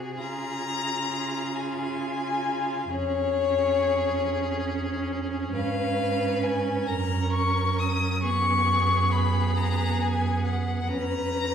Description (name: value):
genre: classical, slow romantic movement for string quartet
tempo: 45 BPM (dotted quarters)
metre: 6/8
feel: rubato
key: Db major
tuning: A4 = 439 Hz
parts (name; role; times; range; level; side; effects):
- rich violin; second line; 0.0-11.5 s; Ab4 to B4; -33 LUFS; left 1 dB; none
- rich viola; accompaniment; 0.0-11.5 s; B3 to Gb4; -32 LUFS; right 3 dB; none
- rich cello; bass; 0.0-11.5 s; F2 to Db3; -29 LUFS; right 3 dB; none
- rich violin; melody; 0.2-11.5 s; Db5 to D#6; -27 LUFS; left 5 dB; none
room: wet recital hall reverb, RT60 1.3 s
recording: heard from further back in the room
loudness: -24 LUFS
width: side -8 dB against mid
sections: 0.0-11.5 A section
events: none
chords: 0.2 Db; 2.9 Db/F; 5.5 C#7/G#; 6.9 F#; 8.2 G#m7/F#; 10.9 C#7/E#